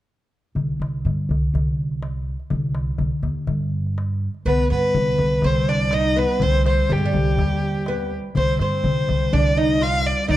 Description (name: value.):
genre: Arabic maqam ensemble.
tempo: 123 BPM.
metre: 4/4.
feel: straight.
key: C maqam nahawand.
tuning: A4 = 441 Hz.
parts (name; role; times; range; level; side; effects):
upright bass; bass; 0.6-10.4 s; C2 to G2; -23 LUFS; equal; none.
darbuka; percussion; 0.6-10.4 s; none; -24 LUFS; left 1 dB; none.
warm violin; melody; 4.5-10.4 s; G4 to F5; -22 LUFS; left 1 dB; none.
oud; second line; 4.5-10.4 s; G3 to F4; -26 LUFS; right 2 dB; none.
rich cello; drone; 4.5-10.4 s; C2; -30 LUFS; equal; none.
room: light reverb.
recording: dark, warm production.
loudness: -19 LUFS.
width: side -14 dB against mid.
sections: 0.6-4.5 A section; 4.5-10.4 B section.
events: none.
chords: none.